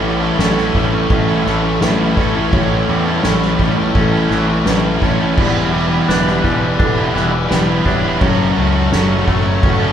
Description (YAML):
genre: post-rock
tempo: 84 BPM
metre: 4/4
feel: straight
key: unclear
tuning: A4 = 441 Hz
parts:
  - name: warm chamber string section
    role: sustained chords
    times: 0.0-9.9 s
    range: A4 to C#6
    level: -29 LUFS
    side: right 2 dB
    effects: none
  - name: felt-muted upright piano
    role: arpeggios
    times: 0.0-9.9 s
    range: A4 to D5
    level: -26 LUFS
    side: right 7 dB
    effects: none
  - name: twangy electric guitar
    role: arpeggios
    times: 0.0-9.9 s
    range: E2 to D4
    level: -23 LUFS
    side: left 1 dB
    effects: phaser
  - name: distorted electric guitar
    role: riff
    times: 0.0-9.9 s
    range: E3 to B4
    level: -22 LUFS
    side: right 6 dB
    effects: overdrive
  - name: thick fuzz guitar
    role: riff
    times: 0.0-9.9 s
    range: F#2 to E4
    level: -18 LUFS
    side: left 4 dB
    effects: distortion
  - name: growling fingered electric bass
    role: bass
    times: 0.0-9.9 s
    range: E1 to E2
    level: -20 LUFS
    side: equal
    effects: overdrive
  - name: soft-mallet drum kit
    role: drums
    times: 0.0-9.8 s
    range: crash cymbal, kick drum, snare drum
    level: -18 LUFS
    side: equal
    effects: none
room: wet large studio reverb, RT60 0.8 s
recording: band playing live in one room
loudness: -12 LUFS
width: side -9 dB against mid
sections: 0.0-9.9 A section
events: none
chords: 0.0 A7; 5.4 Em7; 8.2 F#m7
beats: 0.39 1.10 1.82 | 2.53 3.24 3.95 4.66 | 5.37 6.08 6.79 7.50 | 8.21 8.92 9.63